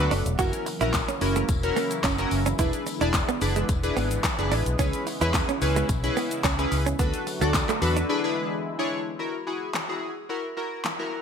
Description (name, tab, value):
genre	dance-pop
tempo	109 BPM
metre	4/4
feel	straight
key	unclear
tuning	A4 = 440 Hz
part	chorused retro synth keys	accompaniment	0.0-11.2 s	C#4 to D5	-28 LUFS	left 1 dB	sidechain pumping
part	sweeping resonant pad	sustained chords	0.0-9.2 s	C#3 to F#4	-34 LUFS	left 2 dB	chorus, sidechain pumping
part	vintage muted fingered electric bass	bass	0.0-8.0 s	E1 to E2	-27 LUFS	equal	sidechain pumping
part	direct-recorded clean electric guitar	riff	0.1-8.1 s	G#3 to F#4	-30 LUFS	right 8 dB	lush chorus
part	pop drum kit	drums	0.1-11.0 s	handclaps, hi-hat, kick drum, shaker, snare drum	-28 LUFS	equal	gated reverb
part	tambourine	percussion	0.1-8.0 s	none	-43 LUFS	left 14 dB	none
room	light reverb, digital ambience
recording	bright 1980s-style digital production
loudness	-23 LUFS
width	side -7 dB against mid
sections	0.0-9.2 A section; 9.2-11.2 B section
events	break 0.0-0.4, 8.1-9.2; drop 0.0-9.2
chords	0.4 F#7; 2.6 E7; 4.8 C#m7; 7.0 Bm7/D; 8.1 E7; 9.2 F#7